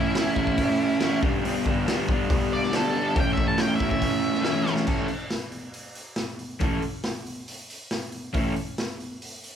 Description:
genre	garage rock duo or trio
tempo	139 BPM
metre	4/4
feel	straight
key	A mixolydian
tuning	A4 = 440 Hz
part	octave-fuzz lead guitar	melody	0.0-4.7 s	E4 to A5	-28 LUFS	equal	distortion
part	raw garage guitar	riff	0.0-8.5 s	G2 to A4	-24 LUFS	equal	overdrive
part	raw garage drum kit	drums	0.2-9.5 s	crash cymbal, hi-hat, kick drum, snare drum	-28 LUFS	equal	none
room	moderate large studio reverb, RT60 1.1 s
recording	band playing live in one room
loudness	-23 LUFS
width	side -9 dB against mid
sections	0.0-4.9 A section; 4.9-9.6 B section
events	drum fill 4.7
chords	0.0 A; 1.2 G; 3.2 A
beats	0.15 0.58 1.01 | 1.44 1.87 2.30 2.73 | 3.16 3.59 4.03 4.46 | 4.89 5.32 5.75 6.18 | 6.61 7.05 7.48 7.91 | 8.34 8.77 9.21

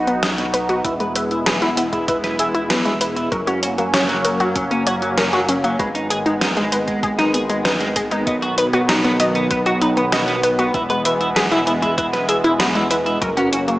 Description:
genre	synthwave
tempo	97 BPM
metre	4/4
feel	straight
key	B major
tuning	A4 = 441 Hz
part	phased analog pad	sustained chords	0.0-13.8 s	C#3 to F#4	-22 LUFS	equal	phaser, chorus, sidechain pumping
part	chorused synth bass	bass	0.0-13.8 s	E1 to B1	-28 LUFS	equal	sidechain pumping
part	wide unison pluck	arpeggios	0.1-13.8 s	G#3 to D#5	-21 LUFS	left 1 dB	digital delay
part	clean electric guitar	riff	0.1-13.8 s	F#3 to E5	-23 LUFS	right 1 dB	analog chorus, low-pass filter, digital delay
part	gated 80s digital drum machine	drums	0.1-13.8 s	hi-hat, snare drum	-22 LUFS	equal	gated reverb, gated reverb snare, studio reverb
part	electronic kick drum	drums	0.8-13.3 s	none	-30 LUFS	equal	studio reverb
room	moderate lush hall reverb, RT60 2.6 s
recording	small speaker sound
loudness	-16 LUFS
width	side -17 dB against mid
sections	0.0-13.8 A section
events	filter sweep on clean electric guitar 0.0-13.8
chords	0.0 B; 0.8 E; 3.3 F#; 5.8 G#m; 8.3 B; 10.7 E; 13.2 F#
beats	0.23 | 0.85 1.46 2.08 2.70 | 3.32 3.94 4.56 5.18 | 5.79 6.41 7.03 7.65 | 8.27 8.89 9.51 10.12 | 10.74 11.36 11.98 12.60 | 13.22

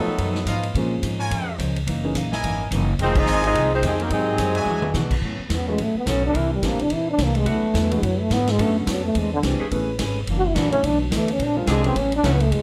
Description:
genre	jazz, big band swing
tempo	214 BPM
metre	4/4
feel	swing 59% on 8ths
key	A major from 5.2 s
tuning	A4 = 440 Hz
part	warm saxophone section	melody	0.0-0.6, 3.0-5.1 s	F3 to Eb5	-26 LUFS	equal	none
part	brilliant trombone section	second line	0.0-0.6, 3.0-5.1 s	C3 to Eb4	-29 LUFS	equal	none
part	picked steel-string acoustic guitar	accompaniment	0.0-12.6 s	F2 to C#5	-32 LUFS	equal	none
part	warm baby grand piano	accompaniment	0.0-12.4 s	D3 to Ab4	-31 LUFS	equal	none
part	upright bass	bass	0.0-12.6 s	E1 to B2	-27 LUFS	equal	none
part	swinging big-band drum kit	drums	0.2-12.6 s	crash cymbal, hi-hat, kick drum, ride cymbal, snare drum, toms	-31 LUFS	equal	none
part	bright trumpet section	stabs	0.5-4.9 s	Fb4 to Ab5	-30 LUFS	equal	none
part	breathy trombone	melody	5.5-12.6 s	C#3 to F#4	-24 LUFS	equal	none
part	bright saxophone section	sustained chords	6.1-12.4 s	C#3 to Bb4	-34 LUFS	equal	none
room	moderate club reverb, RT60 0.5 s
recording	none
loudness	-22 LUFS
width	mono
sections	0.0-5.2 A section; 5.2-12.6 B section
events	band accent 3.1; drum fill 4.7; trombone solo 5.2-12.6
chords	0.0 Cb7#11; 0.8 Bbm7; 1.9 Gb13; 3.0 Fm7; 4.1 Ab7; 4.7 E9; 5.2 A69; 6.3 C9; 7.5 D69; 8.6 Bm9; 9.2 E7alt; 9.7 Amaj9; 10.3 F#7b13; 10.8 Bm7; 11.4 Bb9; 12.0 A69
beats	0.19 0.47 | 0.75 1.03 1.31 1.59 | 1.87 2.15 2.43 2.71 | 2.99 3.27 3.55 3.83 | 4.11 4.39 4.67 4.95 | 5.23 5.51 5.79 6.07 | 6.35 6.63 6.91 7.19 | 7.47 7.75 8.03 8.31 | 8.59 8.87 9.15 9.43 | 9.71 9.99 10.27 10.55 | 10.84 11.12 11.40 11.68 | 11.96 12.24 12.52

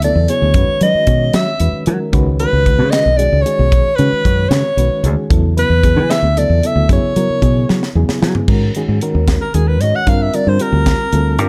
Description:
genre	electric jazz fusion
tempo	76 BPM (dotted quarters)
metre	6/8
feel	straight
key	unclear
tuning	A4 = 440 Hz
part	warm soprano saxophone	melody	0.0-11.5 s	G#4 to F#5	-19 LUFS	equal	none
part	reed electric piano	accompaniment	0.0-11.5 s	C#3 to C#5	-22 LUFS	equal	fast tremolo
part	fingered electric bass	bass	0.0-11.5 s	B1 to F#3	-17 LUFS	equal	none
part	crisp fusion drum kit	drums	0.0-11.5 s	crash cymbal, hi-hat, kick drum, snare drum, toms	-20 LUFS	equal	none
room	light reverb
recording	dark, warm production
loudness	-14 LUFS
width	mono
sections	0.0-8.5 A section; 8.5-11.5 B section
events	drum fill 7.7-8.5; soprano saxophone solo 8.5-11.5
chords	0.0 E9sus4; 0.6 F#9sus4; 2.1 C#9sus4; 5.3 E9sus4; 6.9 F#9sus4; 8.5 G#sus2; 10.1 Gm9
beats	| 0.56 1.35 | 2.14 2.93 | 3.73 4.52 | 5.31 6.11 | 6.90 7.69 | 8.49 9.28 | 10.07 10.87

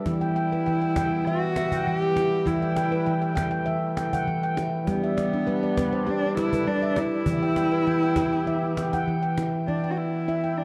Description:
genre	world meditative, meditative tuned percussion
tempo	100 BPM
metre	4/4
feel	straight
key	E minor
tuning	A4 = 440 Hz
part	mellow brass ensemble	sustained chords	0.0-10.6 s	E3 to G5	-36 LUFS	equal	shimmer reverb
part	handpan	arpeggios	0.0-10.6 s	E3 to G5	-28 LUFS	equal	shimmer reverb
part	dark cello	melody	0.1-10.6 s	B3 to G4	-30 LUFS	equal	shimmer reverb, tape echo
part	cajon	percussion	0.1-9.5 s	none	-35 LUFS	equal	none
room	wet echo chamber reverb, RT60 1.6 s, studio reverb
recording	dark, warm production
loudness	-25 LUFS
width	mono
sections	0.0-9.7 A section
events	none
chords	0.1 Em; 4.9 G; 7.3 Em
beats	| 0.07 0.67 1.27 1.87 | 2.47 3.07 3.67 4.27 | 4.87 5.47 6.07 6.67 | 7.27 7.87 8.47 9.07 | 9.67 10.28

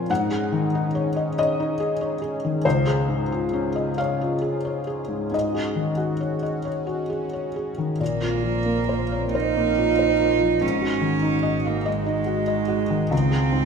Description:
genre	neoclassical piano and strings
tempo	44-48 BPM (dotted quarters)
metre	6/8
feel	rubato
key	unclear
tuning	A4 = 440 Hz
part	felt-muted upright piano	accompaniment	0.0-13.7 s	Db2 to Ab5	-23 LUFS	left 2 dB	none
part	warm analog pad	sustained chords	0.0-13.7 s	Db3 to Bb4	-32 LUFS	right 4 dB	chorus
part	rich cello	second line	8.0-13.7 s	Ab3 to Eb4	-23 LUFS	right 8 dB	none
part	dark double bass	bass	8.0-13.7 s	Ab1 to Db2	-30 LUFS	right 1 dB	none
room	moderate scoring stage reverb, RT60 1.6 s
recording	minimal, uncompressed stereo recording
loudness	-21 LUFS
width	side -6 dB against mid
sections	0.0-8.0 A section; 8.0-13.7 A section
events	none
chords	0.1 Ab7sus4; 2.6 Dbmaj7; 5.3 Ab7sus4; 8.0 Bbsus2; 10.6 Ab7sus4; 13.1 Dbmaj7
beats	| 0.10 1.38 | 2.65 3.99 | 5.33 6.67 | 8.01 9.35 | 10.63 11.87 | 13.12

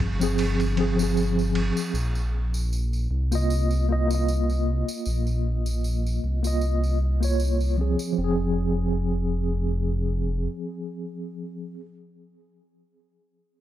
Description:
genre	trip hop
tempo	77 BPM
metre	4/4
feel	swing 55% on 16ths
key	F minor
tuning	A4 = 440 Hz
part	mellow tine electric piano	accompaniment	0.0-11.9 s	F3 to Eb5	-27 LUFS	equal	medium stereo tremolo, vintage 12-bit sampler grit, tape echo
part	dark detuned saw bass	bass	0.0-10.5 s	F1 to C2	-24 LUFS	equal	tube saturation
part	trip hop sampler-style drum kit	drums	0.0-1.8 s	kick drum, ride cymbal	-33 LUFS	right 1 dB	studio reverb
part	tambourine	percussion	0.2-8.1 s	none	-39 LUFS	right 2 dB	none
room	light reverb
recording	dark, warm production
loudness	-22 LUFS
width	side -13 dB against mid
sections	0.0-8.2 A section; 8.2-11.3 B section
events	none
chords	0.0 Fm; 1.9 Bbsus4; 8.2 Fm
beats	0.38 1.16 | 1.94 2.72 3.50 4.28 | 5.06 5.84 6.62 7.39 | 8.17 8.95 9.73 10.51

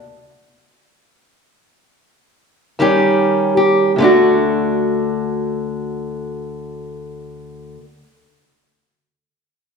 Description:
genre	blues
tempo	free time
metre	none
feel	none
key	D major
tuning	A4 = 440 Hz
part	fingerpicked steel-string acoustic guitar	solo	0.0-7.8 s	D2 to G4	-14 LUFS	equal	none
room	wet recital hall reverb, RT60 1.6 s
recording	recorded in a church or concert hall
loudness	-14 LUFS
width	side -5 dB against mid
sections	0.0-4.0 A section; 4.0-8.8 B section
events	slowing down 0.0-4.0; stop 0.0-2.8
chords	0.0 N.C.; 2.8 Eb7; 4.0 D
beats	free time

